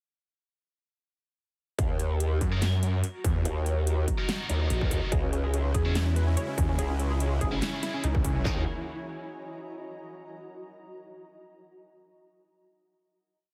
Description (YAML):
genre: heavy wobble dubstep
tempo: 144 BPM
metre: 4/4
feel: swing 53% on 16ths, half-time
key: Eb phrygian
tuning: A4 = 440 Hz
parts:
  - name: growl bass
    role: bass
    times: 1.8-8.6 s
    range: Ab1 to Eb2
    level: -30 LUFS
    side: equal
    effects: chorus, overdrive
  - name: dubstep drum kit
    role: drums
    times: 1.8-8.6 s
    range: handclaps, kick drum, toms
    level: -32 LUFS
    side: equal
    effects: distortion, studio reverb
  - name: dubstep drum kit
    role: drums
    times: 1.8-8.3 s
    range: handclaps, hi-hat, snare drum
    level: -37 LUFS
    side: equal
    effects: studio reverb
  - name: granular cloud pad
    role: texture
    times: 2.8-10.1 s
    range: Fb4 to Bb5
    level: -43 LUFS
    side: equal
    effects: built-in reverb, sidechain pumping
  - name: snarling distorted saw bass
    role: bass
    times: 2.4-8.4 s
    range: Bb1 to Gb2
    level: -29 LUFS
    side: equal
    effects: distortion, overdrive
  - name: scooped high-gain guitar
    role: stabs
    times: 2.5-8.6 s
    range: Db4 to Bb4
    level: -41 LUFS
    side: equal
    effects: distortion, dub echo
  - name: unison pluck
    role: melody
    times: 5.1-8.6 s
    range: Db4 to Db5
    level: -38 LUFS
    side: equal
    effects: lush chorus, dub echo
  - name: supersaw pad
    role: sustained chords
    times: 5.1-8.6 s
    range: Db3 to Gb4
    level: -41 LUFS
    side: equal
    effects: sidechain pumping
room: digital ambience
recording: heavily compressed radio sound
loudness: -28 LUFS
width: mono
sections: 1.8-8.5 drop; 8.5-10.1 final chord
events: drop 1.8-8.5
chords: 1.8 Ebm; 5.1 Dbm; 8.5 Ebm